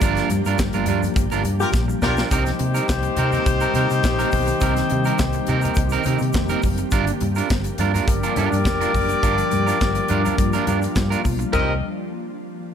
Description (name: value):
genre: disco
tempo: 104 BPM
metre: 4/4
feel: straight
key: C minor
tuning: A4 = 438 Hz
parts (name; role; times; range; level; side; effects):
- electric guitar at the edge of break-up; accompaniment; 0.0-11.7 s; C4 to Bb4; -26 LUFS; right 9 dB; none
- ethereal airy pad; sustained chords; 0.0-11.8 s; Eb3 to G4; -26 LUFS; left 1 dB; ensemble chorus, built-in reverb
- hollow-body short-scale fingered electric bass; bass; 0.0-11.8 s; F1 to C3; -24 LUFS; equal; none
- modern studio drum kit; drums; 0.0-11.7 s; handclaps, hi-hat, kick drum, snare drum, toms; -24 LUFS; equal; none
- congas; percussion; 0.0-11.8 s; none; -32 LUFS; left 2 dB; none
- tube shaker; percussion; 0.0-11.8 s; none; -40 LUFS; left 6 dB; none
- warm horn section; stabs; 1.6-11.7 s; C4 to Eb5; -23 LUFS; left 4 dB; slapback echo
room: studio reverb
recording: none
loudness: -18 LUFS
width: side -8 dB against mid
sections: 0.0-2.3 A section; 2.3-11.5 B section; 11.5-12.7 C section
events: band accent 0.0-2.3; drum fill 1.7-2.3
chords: 0.0 Gm7; 2.3 Cm7; 6.9 Gm7; 11.5 Cm7